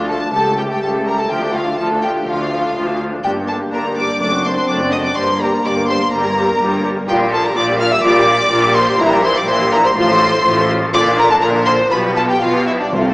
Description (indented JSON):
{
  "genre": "quick classical-period movement for symphony orchestra",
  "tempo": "124 BPM",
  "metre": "4/4",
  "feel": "rubato",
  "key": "D minor",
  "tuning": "A4 = 440 Hz",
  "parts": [
    { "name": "clear studio violin section", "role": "melody", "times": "0.0-13.1 s", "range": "C5 to F6", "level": "-18 LUFS", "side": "equal", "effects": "none" },
    { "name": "clear chamber violin section", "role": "second line", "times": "0.0-13.1 s", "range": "C4 to F5", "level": "-20 LUFS", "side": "equal", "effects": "none" },
    { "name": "rich chamber viola section", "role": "accompaniment", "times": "0.0-13.1 s", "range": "D3 to Bb4", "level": "-20 LUFS", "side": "equal", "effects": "none" },
    { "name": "dark French horn section", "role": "sustained chords", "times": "0.0-13.1 s", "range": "F3 to G4", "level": "-22 LUFS", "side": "equal", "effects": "none" },
    { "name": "clear studio cello section", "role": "bass", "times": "0.0-13.1 s", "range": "C#2 to C3", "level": "-21 LUFS", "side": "equal", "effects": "none" },
    { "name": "rich chamber double bass section", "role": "bass", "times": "0.0-13.1 s", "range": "F#1 to D2", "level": "-26 LUFS", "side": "equal", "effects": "none" },
    { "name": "timpani", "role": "percussion", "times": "12.9-13.1 s", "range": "C3", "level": "-26 LUFS", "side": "equal", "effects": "none" }
  ],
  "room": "wet recital hall reverb, RT60 1.7 s",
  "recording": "small speaker sound",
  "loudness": "-13 LUFS",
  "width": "side -23 dB against mid",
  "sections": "0.0-13.1 A section",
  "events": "none",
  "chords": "0.3 A7/C#; 1.3 Dm; 3.2 Gm; 4.2 D7/F#; 5.2 Gm; 7.1 Gm7/Bb; 9.0 C7/Bb; 10.0 F/A; 10.9 Bb; 11.9 G7/B"
}